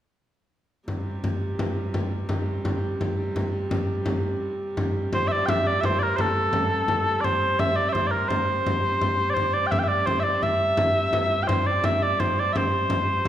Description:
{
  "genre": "medieval dance",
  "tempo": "113 BPM (dotted quarters)",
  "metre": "6/8",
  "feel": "straight",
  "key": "C major",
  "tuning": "A4 = 440 Hz",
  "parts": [
    { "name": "rich hurdy-gurdy", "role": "drone", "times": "0.9-13.3 s", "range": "C3 to G3", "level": "-32 LUFS", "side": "right 1 dB", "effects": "none" },
    { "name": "frame drum", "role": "percussion", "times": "0.9-13.3 s", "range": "none", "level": "-26 LUFS", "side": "equal", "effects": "none" },
    { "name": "mellow small bagpipes", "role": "melody", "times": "5.1-13.3 s", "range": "A4 to G5", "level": "-22 LUFS", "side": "equal", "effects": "none" }
  ],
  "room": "wet recital hall reverb, RT60 1.5 s",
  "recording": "recorded in a church or concert hall",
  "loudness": "-22 LUFS",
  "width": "side -11 dB against mid",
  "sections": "0.9-5.1 A section; 5.1-13.3 B section",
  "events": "none",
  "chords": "none",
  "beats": "| 0.87 1.41 | 1.94 2.47 | 3.00 3.53 | 4.06 4.59 | 5.12 5.65 | 6.18 6.71 | 7.25 7.78 | 8.31 8.84 | 9.37 9.90 | 10.43 10.96 | 11.49 12.02 | 12.55 13.08"
}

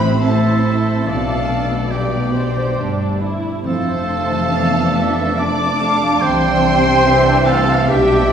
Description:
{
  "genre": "cinematic",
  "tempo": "71 BPM",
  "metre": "3/4",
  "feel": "rubato",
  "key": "C major",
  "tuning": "A4 = 440 Hz",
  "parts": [
    { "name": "rich symphonic violin section", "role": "melody", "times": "0.0-8.3 s", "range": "G5 to D6", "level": "-25 LUFS", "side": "left 1 dB", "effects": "none" },
    { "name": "rich symphonic violin section", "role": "second line", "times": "0.0-8.3 s", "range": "C5 to G5", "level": "-26 LUFS", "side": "equal", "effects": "none" },
    { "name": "dark symphonic viola section", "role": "accompaniment", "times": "0.0-8.3 s", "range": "E3 to C5", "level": "-21 LUFS", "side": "right 1 dB", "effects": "none" },
    { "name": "mellow French horn section", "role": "sustained chords", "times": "0.0-8.3 s", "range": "G3 to D4", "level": "-22 LUFS", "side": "left 2 dB", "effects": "none" },
    { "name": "concert harp", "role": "arpeggios", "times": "0.0-8.3 s", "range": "A2 to A4", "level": "-23 LUFS", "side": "left 3 dB", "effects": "none" },
    { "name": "rich studio double bass section", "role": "bass", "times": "0.0-8.3 s", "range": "F1 to C2", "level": "-23 LUFS", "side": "right 2 dB", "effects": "none" },
    { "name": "warm symphonic cello section", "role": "bass", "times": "0.0-8.3 s", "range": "F2 to C3", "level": "-23 LUFS", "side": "right 2 dB", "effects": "none" },
    { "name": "clear oboe", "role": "second line", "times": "0.2-8.3 s", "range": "G4 to D5", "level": "-22 LUFS", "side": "right 2 dB", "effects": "none" },
    { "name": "concert flute", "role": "second line", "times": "0.2-8.3 s", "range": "D5 to A5", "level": "-22 LUFS", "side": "right 2 dB", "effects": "none" }
  ],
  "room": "wet scoring stage reverb, RT60 1.8 s",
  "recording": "heard from further back in the room, studio reverb",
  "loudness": "-14 LUFS",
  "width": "side -8 dB against mid",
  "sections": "0.0-8.3 A section",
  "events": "none",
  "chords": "0.0 Am; 1.1 Gadd9/B; 3.7 F6; 6.2 C",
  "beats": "0.22 | 1.06 1.92 2.79 | 3.66 4.52 5.40 | 6.23 7.06 7.88"
}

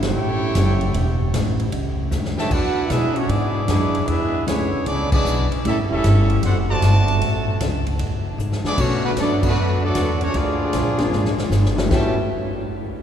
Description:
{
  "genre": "jazz, big band swing",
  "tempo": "153 BPM",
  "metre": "4/4",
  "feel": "swing 66% on 8ths",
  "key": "A major",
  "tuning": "A4 = 438 Hz",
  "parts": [
    { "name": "bright trumpet section", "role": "melody", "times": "0.0-12.2 s", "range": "A3 to A5", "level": "-25 LUFS", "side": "equal", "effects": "none" },
    { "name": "warm trombone section", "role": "second line", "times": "0.0-12.1 s", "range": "A2 to G4", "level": "-25 LUFS", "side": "right 2 dB", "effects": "none" },
    { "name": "upright bass", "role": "bass", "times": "0.0-12.2 s", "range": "E1 to B2", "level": "-20 LUFS", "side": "equal", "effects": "none" },
    { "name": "swinging big-band drum kit", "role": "drums", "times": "0.0-12.0 s", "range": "crash cymbal, hi-hat, kick drum, ride cymbal, snare drum", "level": "-26 LUFS", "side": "left 1 dB", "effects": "none" },
    { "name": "clear concert grand piano", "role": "accompaniment", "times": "8.8-12.3 s", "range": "A2 to F#4", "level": "-26 LUFS", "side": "left 3 dB", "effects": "none" }
  ],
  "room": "wet cathedral reverb, RT60 5.2 s",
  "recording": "recorded in a church or concert hall",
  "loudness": "-17 LUFS",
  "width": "side -9 dB against mid",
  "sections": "0.0-8.8 A section; 8.8-11.9 B section; 11.9-13.0 C section",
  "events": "band accent 0.0, 5.0, 9.4; drum fill 2.1-2.5, 8.4-8.8, 11.1-11.9",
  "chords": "0.0 A7; 2.5 E7; 5.6 A7; 6.4 D7; 7.2 A; 8.0 E7; 8.8 Bm7; 10.3 Bb7; 11.9 A13",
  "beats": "0.15 0.54 | 0.94 1.33 1.72 2.11 | 2.50 2.89 3.29 3.68 | 4.07 4.46 4.85 5.25 | 5.64 6.03 6.42 6.82 | 7.21 7.60 7.99 8.38 | 8.78 9.17 9.56 9.95 | 10.34 10.74 11.13 11.52 | 11.91"
}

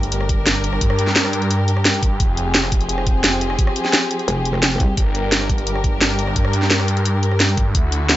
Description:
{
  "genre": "dark technical drum and bass",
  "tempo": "173 BPM",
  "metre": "4/4",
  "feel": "straight",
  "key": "G phrygian",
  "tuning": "A4 = 440 Hz",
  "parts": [
    { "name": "dark studio string section", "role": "sustained chords", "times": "0.0-8.2 s", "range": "D3 to Bb4", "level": "-23 LUFS", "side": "left 1 dB", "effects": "sidechain pumping" },
    { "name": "phased detuned saw bass", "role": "bass", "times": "0.0-8.2 s", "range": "F1 to G2", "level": "-21 LUFS", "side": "equal", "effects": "phaser, sidechain pumping" },
    { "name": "drum and bass drum kit", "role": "drums", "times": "0.0-8.2 s", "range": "hi-hat, rim click, snare drum", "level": "-18 LUFS", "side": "equal", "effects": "none" },
    { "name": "sub drop", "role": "sound effects", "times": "0.1-0.8 s", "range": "none", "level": "-33 LUFS", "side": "equal", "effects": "none" },
    { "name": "electronic kick drum", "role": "drums", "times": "0.3-7.8 s", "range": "none", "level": "-19 LUFS", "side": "equal", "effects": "none" },
    { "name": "metallic wobble bass", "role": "bass", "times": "4.3-5.0 s", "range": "F1 to C2", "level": "-20 LUFS", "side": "equal", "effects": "chorus" }
  ],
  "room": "light reverb",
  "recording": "nothing above 7.8 kHz",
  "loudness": "-15 LUFS",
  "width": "side -14 dB against mid",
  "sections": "0.0-8.2 A section",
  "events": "impact 0.0-0.8",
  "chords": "0.0 Gm; 2.2 Fm; 5.0 Gm",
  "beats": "0.12 0.47 | 0.81 1.16 1.50 1.85 | 2.20 2.55 2.89 3.24 | 3.59 3.93 4.28 4.63 | 4.97 5.32 5.67 6.01 | 6.36 6.71 7.05 7.40 | 7.75 8.10"
}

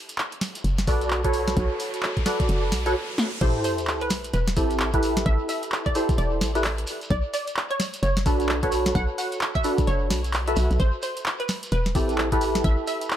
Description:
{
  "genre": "UK garage, two-step garage",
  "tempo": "130 BPM",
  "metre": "4/4",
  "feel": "swing 61% on 16ths",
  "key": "unclear",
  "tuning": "A4 = 436 Hz",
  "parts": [
    { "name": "riser and sub drop", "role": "sound effects", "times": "0.4-5.3 s", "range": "none", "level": "-36 LUFS", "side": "equal", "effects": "none" },
    { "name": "punchy analog drum machine", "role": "drums", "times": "0.1-13.2 s", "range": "crash cymbal, handclaps, hi-hat, snare drum", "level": "-28 LUFS", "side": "equal", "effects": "none" },
    { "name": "shekere", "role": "percussion", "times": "0.1-13.2 s", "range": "none", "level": "-39 LUFS", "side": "right 2 dB", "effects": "analog delay" },
    { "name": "hollow knocking FM bass", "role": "bass", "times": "0.6-12.8 s", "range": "E1 to B1", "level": "-25 LUFS", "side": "equal", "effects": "none" },
    { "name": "percussive organ stab", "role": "stabs", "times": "0.9-13.2 s", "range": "C4 to E5", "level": "-26 LUFS", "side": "right 1 dB", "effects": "ensemble chorus, analog delay" },
    { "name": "electronic kick drum", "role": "drums", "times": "0.9-12.8 s", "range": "none", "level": "-24 LUFS", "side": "equal", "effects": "none" },
    { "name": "hollow square pluck", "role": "melody", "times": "3.4-13.0 s", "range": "B4 to F#5", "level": "-31 LUFS", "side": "right 1 dB", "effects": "ensemble chorus, analog delay" }
  ],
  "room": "light reverb",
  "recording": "echo-heavy mix",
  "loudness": "-22 LUFS",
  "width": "side -11 dB against mid",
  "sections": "0.0-3.4 A section; 3.4-13.2 B section",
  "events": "riser 0.4-3.4; break 3.0-3.4; drum fill 3.2; drop 3.4-13.2; impact 3.4-5.3",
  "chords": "0.0 Bm7; 3.4 Am7; 6.9 Bm7; 10.8 Am7",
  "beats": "0.18 0.64 1.10 | 1.57 2.03 2.49 2.95 | 3.41 3.87 4.34 4.80 | 5.26 5.72 6.18 6.64 | 7.11 7.57 8.03 8.49 | 8.95 9.41 9.87 10.34 | 10.80 11.26 11.72 12.18 | 12.64 13.11"
}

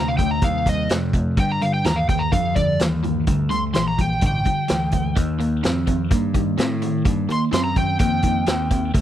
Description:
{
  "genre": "blues rock power trio and southern rock",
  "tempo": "127 BPM",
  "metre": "4/4",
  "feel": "straight",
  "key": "unclear",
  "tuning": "A4 = 438 Hz",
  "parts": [
    { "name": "overdriven slide guitar", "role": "melody", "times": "0.0-8.9 s", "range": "D5 to C6", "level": "-23 LUFS", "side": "equal", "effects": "none" },
    { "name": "crunchy overdriven guitar", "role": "riff", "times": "0.0-9.0 s", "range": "G2 to C4", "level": "-23 LUFS", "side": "equal", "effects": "phaser" },
    { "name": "growling picked electric bass", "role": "bass", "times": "0.0-9.0 s", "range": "A1 to A2", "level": "-24 LUFS", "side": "equal", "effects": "overdrive" },
    { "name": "vintage drum kit", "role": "drums", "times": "0.2-9.0 s", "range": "hi-hat, kick drum, snare drum", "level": "-22 LUFS", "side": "equal", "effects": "none" }
  ],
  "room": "studio reverb",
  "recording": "dry, close 1970s-style studio recording",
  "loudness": "-18 LUFS",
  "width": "side -11 dB against mid",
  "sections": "0.0-9.0 A section",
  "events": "none",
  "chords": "0.0 Cmadd9; 1.4 G7(no3); 5.2 Eb",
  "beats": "0.43 0.91 | 1.38 1.85 2.33 2.80 | 3.27 3.75 4.22 4.69 | 5.17 5.64 6.11 6.58 | 7.06 7.53 8.00 8.47 | 8.94"
}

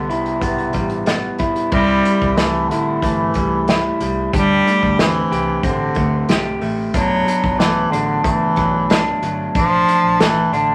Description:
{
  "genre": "indie pop, bedroom pop",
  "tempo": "92 BPM",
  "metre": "4/4",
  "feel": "straight",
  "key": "C lydian",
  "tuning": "A4 = 443 Hz",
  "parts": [
    { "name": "bright bass clarinet", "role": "melody", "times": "0.0-10.7 s", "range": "C3 to G3", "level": "-20 LUFS", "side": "equal", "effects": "none" },
    { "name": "electric guitar through a small old amp", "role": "accompaniment", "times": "0.0-10.7 s", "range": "B2 to G4", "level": "-22 LUFS", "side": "equal", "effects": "warbly pitch drift" },
    { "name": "vintage muted fingered electric bass", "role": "bass", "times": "0.0-10.7 s", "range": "F#1 to D2", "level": "-30 LUFS", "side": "equal", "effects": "none" },
    { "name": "unplugged drum kit", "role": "drums", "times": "0.1-10.7 s", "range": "crash cymbal, hi-hat, kick drum, snare drum", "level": "-23 LUFS", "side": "equal", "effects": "none" }
  ],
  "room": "wet studio reverb, RT60 0.6 s",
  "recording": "vinyl crackle",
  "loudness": "-17 LUFS",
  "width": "mono",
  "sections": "0.0-1.7 A section; 1.7-10.7 B section",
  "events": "none",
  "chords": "0.0 Cmaj7; 1.7 C6; 4.3 D7sus4; 6.9 Bm7; 9.6 Bbmaj7",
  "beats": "0.42 1.07 | 1.72 2.38 3.03 3.68 | 4.33 4.98 5.64 6.29 | 6.94 7.59 8.25 8.90 | 9.55 10.20"
}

